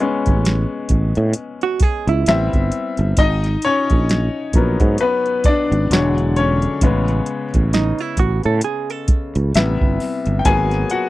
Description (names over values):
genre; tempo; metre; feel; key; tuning
R&B, neo-soul; 66 BPM; 4/4; swing 58% on 16ths; unclear; A4 = 441 Hz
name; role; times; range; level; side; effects
bright upright piano; accompaniment; 0.0-11.1 s; C3 to G#5; -20 LUFS; left 3 dB; none
sustaining fretless electric bass; bass; 0.3-10.8 s; E1 to A2; -18 LUFS; right 1 dB; none
soft vintage rhythm box; drums; 0.3-11.1 s; hi-hat, kick drum, snare drum; -18 LUFS; right 1 dB; overdrive
hollow-body jazz guitar; second line; 1.6-9.5 s; D#4 to A4; -22 LUFS; right 8 dB; none
room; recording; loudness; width
little or no reverb; dry, close 1970s-style studio recording; -15 LUFS; side -17 dB against mid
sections
0.0-11.1 A section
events
upright piano solo 0.0-11.1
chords
0.0 Amaj7; 2.3 Am9; 3.2 G#m9; 5.9 E13; 6.8 Amaj7; 9.5 Am9; 10.4 G#m9